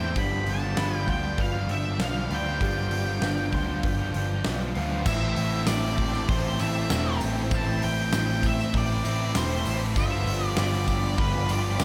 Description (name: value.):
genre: rock, shoegaze and dream pop.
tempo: 98 BPM.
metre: 4/4.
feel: straight.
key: A minor.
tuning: A4 = 440 Hz.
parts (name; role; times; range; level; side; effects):
octave-fuzz lead guitar; melody; 0.0-11.8 s; B4 to B5; -34 LUFS; equal; distortion, digital delay.
string machine, violins; sustained chords; 0.0-11.8 s; E4 to B5; -39 LUFS; equal; ensemble chorus.
electric guitar through a small old amp; arpeggios; 0.0-5.1 s; G4 to C6; -42 LUFS; equal; analog chorus, digital delay.
crunchy overdriven guitar; riff; 0.0-11.8 s; G2 to F4; -36 LUFS; equal; none.
raw garage guitar; riff; 0.0-11.8 s; G2 to F4; -38 LUFS; equal; none.
thick fuzz guitar; riff; 0.0-11.8 s; G2 to A3; -37 LUFS; equal; distortion, analog chorus.
vintage muted picked electric bass; bass; 0.0-11.8 s; E1 to E2; -31 LUFS; equal; none.
huge arena drum kit; drums; 0.2-11.8 s; crash cymbal, hi-hat, kick drum, snare drum; -32 LUFS; equal; none.
tambourine; percussion; 5.1-11.8 s; none; -46 LUFS; equal; none.
room: studio ambience.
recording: none.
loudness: -26 LUFS.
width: mono.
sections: 0.0-5.1 A section; 5.1-11.8 B section.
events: none.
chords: 0.2 G7; 5.1 Am7; 10.0 G7.